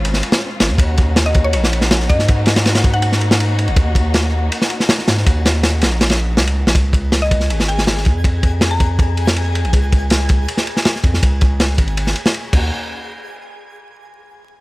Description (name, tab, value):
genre	drum and bass, jungle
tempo	161 BPM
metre	4/4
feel	straight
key	unclear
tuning	A4 = 437 Hz
part	dark studio string section	sustained chords	0.0-6.7, 12.5-12.7 s	Ab3 to Gb4	-26 LUFS	left 2 dB	none
part	saturated sub bass	bass	0.0-12.7 s	Eb1 to Ab2	-17 LUFS	equal	none
part	crunchy breakbeat drum kit	drums	0.0-12.6 s	crash cymbal, kick drum, ride cymbal, snare drum	-15 LUFS	equal	none
part	mallet-like synth pluck	melody	1.3-3.1, 7.2-9.0 s	Db5 to Bb5	-23 LUFS	left 1 dB	chorus, dub echo
part	twinkling granular texture	texture	7.2-12.7 s	Ab4 to Ab5	-29 LUFS	left 2 dB	built-in reverb
room	small room reverb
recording	vinyl crackle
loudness	-13 LUFS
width	side -21 dB against mid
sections	0.0-6.8 A section; 6.8-12.7 B section; 12.7-14.2 C section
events	drop 0.0-6.8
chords	0.0 Dbmaj7; 0.8 Ebm7; 6.8 Db; 12.5 Ebm7; 12.7 N.C.